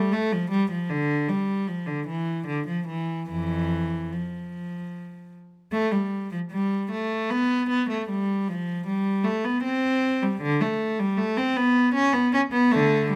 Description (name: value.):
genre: classical, baroque-style suite movement for unaccompanied cello.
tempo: 77 BPM.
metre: 3/4.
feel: rubato.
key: F major.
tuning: A4 = 440 Hz.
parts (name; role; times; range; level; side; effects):
rich cello; solo; 0.0-13.2 s; F2 to Db4; -25 LUFS; equal; none.
room: moderate stone room reverb, RT60 1.1 s.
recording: close, detailed microphones.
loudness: -25 LUFS.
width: mono.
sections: 0.0-5.7 A section; 5.7-13.2 A section.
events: none.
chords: none.